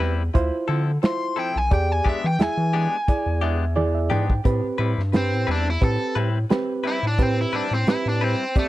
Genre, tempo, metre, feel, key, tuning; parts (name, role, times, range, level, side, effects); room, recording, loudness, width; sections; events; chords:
straight-eighth soul blues; 88 BPM; 4/4; swing 55% on 16ths; A minor; A4 = 439 Hz
reed electric piano; accompaniment; 0.0-8.7 s; C4 to G5; -26 LUFS; right 3 dB
direct-recorded clean electric guitar; stabs; 0.0-8.4 s; F3 to B4; -31 LUFS; left 6 dB; tape echo
round analog bass; bass; 0.0-8.4 s; B1 to E3; -23 LUFS; equal
warm soul drum kit; drums; 0.0-8.7 s; hi-hat, kick drum, snare drum, toms; -21 LUFS; equal
biting overdriven guitar; melody; 1.1-8.7 s; A3 to C6; -26 LUFS; left 1 dB
small room ambience; dry, close 1970s-style studio recording; -20 LUFS; side -16 dB against mid
0.0-4.4 A section; 4.4-8.7 B section
reed electric piano fill 3.1-4.4; drum fill 3.8-4.4; overdriven electric guitar solo 4.4-8.7
0.3 Dm9; 1.7 E7#9; 4.4 Am9